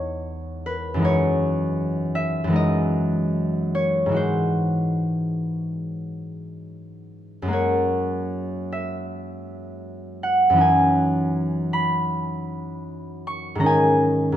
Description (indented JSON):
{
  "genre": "classical, solo harp piece",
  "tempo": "70-82 BPM",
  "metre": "4/4",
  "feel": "rubato",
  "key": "unclear",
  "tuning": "A4 = 437 Hz",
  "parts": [
    { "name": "concert harp", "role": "solo", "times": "0.0-14.4 s", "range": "E2 to C#6", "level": "-21 LUFS", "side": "equal", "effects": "none" }
  ],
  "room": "moderate recital hall reverb, RT60 1.5 s",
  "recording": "minimal, uncompressed stereo recording",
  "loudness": "-20 LUFS",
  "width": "side -11 dB against mid",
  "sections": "0.0-14.4 A section",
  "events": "none",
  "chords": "0.0 Emaj7; 1.0 F#sus2; 4.2 G#aug7; 7.5 F#add9; 10.6 C#m11/F#; 13.7 G#7sus4"
}